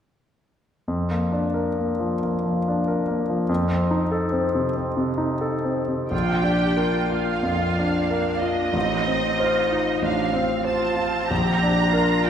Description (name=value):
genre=classical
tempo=92 BPM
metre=4/4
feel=uneven beats, rubato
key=Bb major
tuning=A4 = 440 Hz
part: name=warm concert grand piano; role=melody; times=0.9-12.3 s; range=A1 to C5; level=-21 LUFS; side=left 1 dB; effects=none
part: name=rich symphonic violin section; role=melody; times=6.1-12.3 s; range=Eb5 to Bb5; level=-26 LUFS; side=right 3 dB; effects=none
part: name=rich symphonic viola section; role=accompaniment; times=6.1-12.3 s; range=Bb3 to G4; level=-27 LUFS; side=right 3 dB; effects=none
room=wet scoring stage reverb, RT60 1.8 s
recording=heard from further back in the room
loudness=-20 LUFS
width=side -8 dB against mid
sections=0.9-6.1 A section; 6.1-12.3 B section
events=none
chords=0.9 Bb/F; 3.5 F7; 6.1 Bb; 8.8 F7/A; 11.3 Bb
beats=| 0.88 1.55 2.21 2.86 | 3.49 4.11 4.73 5.41 | 6.12 6.79 7.46 8.11 | 8.75 9.39 10.03 10.66 | 11.30 11.94